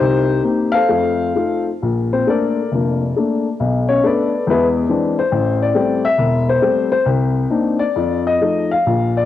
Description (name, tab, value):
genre	solo jazz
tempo	136 BPM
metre	4/4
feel	swing 65% on 8ths, rubato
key	F major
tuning	A4 = 439 Hz
part	dark upright piano	solo	0.0-9.3 s	E1 to F5	-14 LUFS	left 3 dB	none
room	light reverb, small room ambience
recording	home recording on cassette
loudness	-15 LUFS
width	side -12 dB against mid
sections	0.0-1.8 A section; 1.8-9.3 B section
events	upright piano solo 1.8-9.3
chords	0.0 Cm7; 0.9 F7; 1.8 Bbmaj7; 3.6 Bm9; 4.5 E7b13; 5.3 Am7; 7.1 Cm9; 8.0 F7